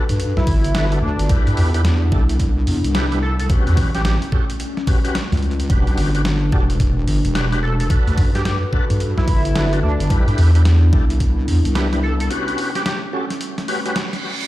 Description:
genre	glitch hop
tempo	109 BPM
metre	4/4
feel	swing 63% on 16ths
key	unclear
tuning	A4 = 440 Hz
part	warbly tape-like pad	sustained chords	0.0-14.5 s	C3 to B4	-27 LUFS	left 1 dB	chorus, built-in reverb, sidechain pumping
part	overdriven tonewheel organ	stabs	0.0-14.0 s	C#4 to B4	-26 LUFS	left 1 dB	chorus vibrato, slow rotary speaker, sidechain pumping, ping-pong delay
part	downlifter and reverse cymbal	sound effects	0.0-1.3, 13.8-14.5 s	none	-30 LUFS	right 6 dB	none
part	wobble bass	bass	0.1-12.3 s	E1 to G2	-17 LUFS	equal	chorus, tube saturation
part	boom bap sampler-style drum kit	drums	0.1-14.5 s	hi-hat, snare drum	-27 LUFS	equal	studio reverb
part	sync lead	melody	0.4-4.2, 7.6-13.0 s	D4 to A4	-27 LUFS	equal	analog chorus, ping-pong delay
part	electronic kick drum	drums	0.5-11.3 s	none	-17 LUFS	equal	overdrive, studio reverb
room	little or no reverb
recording	played on a big sound system in a bare room, large studio reverb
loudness	-15 LUFS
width	side -16 dB against mid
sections	0.0-14.5 A section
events	break 12.3-14.5; reverse cymbal 13.8-14.5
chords	0.0 Gmaj9; 1.3 Cmaj9; 3.5 A13; 5.7 Em7; 7.9 Gmaj9; 10.1 Cmaj9; 12.3 A13

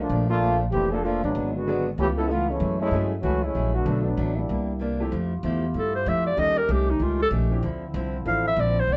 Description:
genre	jazz, big band swing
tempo	191 BPM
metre	4/4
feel	swing 63% on 8ths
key	F major from 5.1 s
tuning	A4 = 439 Hz
part	warm trombone section	second line	0.0-4.8 s	D3 to A4	-28 LUFS	equal	none
part	upright bass	bass	0.0-9.0 s	F1 to G2	-28 LUFS	equal	none
part	fingerpicked acoustic archtop guitar	accompaniment	0.1-9.0 s	G#2 to G#4	-35 LUFS	equal	none
part	clear upright piano	accompaniment	0.9-8.4 s	F3 to A4	-34 LUFS	equal	none
part	clear trombone section	sustained chords	5.1-9.0 s	D3 to G4	-38 LUFS	equal	none
part	mellow clarinet	melody	5.8-9.0 s	Eb4 to F5	-25 LUFS	equal	none
room	moderate studio reverb, RT60 0.6 s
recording	band playing live in one room, nothing above 7.9 kHz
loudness	-24 LUFS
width	mono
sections	0.0-5.1 A section; 5.1-9.0 B section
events	trombone section solo 0.0-5.1; clarinet solo 5.1-9.0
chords	0.1 Bbmaj7; 1.4 G#m7b5; 2.0 C#7alt; 2.6 F#m9; 3.9 Bm7; 4.5 C9; 5.1 Fmaj9; 6.4 Eb7#11; 7.6 Dm9

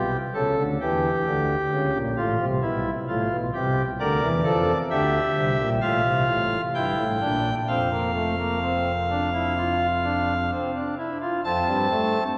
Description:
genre	classical, baroque-style 3-part fugue for pipe organ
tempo	65 BPM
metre	4/4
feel	straight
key	F major from 4.0 s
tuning	A4 = 440 Hz
part	pipe organ, cornet	solo	0.0-12.2 s	F1 to A5	-24 LUFS	equal	none
room	wet church reverb, RT60 2.8 s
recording	none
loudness	-24 LUFS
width	mono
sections	0.0-11.4 A section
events	none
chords	0.3 A7/C#; 2.2 Am9; 4.0 Bb/D; 5.8 F/A; 6.7 Gm69; 7.7 F

